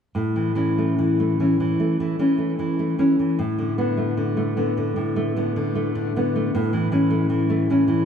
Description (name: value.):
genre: romantic piece for solo classical guitar.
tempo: 71-79 BPM.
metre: 4/4.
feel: rubato.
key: A major.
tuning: A4 = 440 Hz.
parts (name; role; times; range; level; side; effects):
nylon-string guitar; solo; 0.1-8.1 s; A2 to C#4; -19 LUFS; equal; ping-pong delay.
room: wet plate reverb, RT60 2.5 s.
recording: dreamy mix soaked in reverb.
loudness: -19 LUFS.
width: side -7 dB against mid.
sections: 0.1-8.1 A section.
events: none.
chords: 0.1 A; 3.4 Bm7/A; 6.5 A.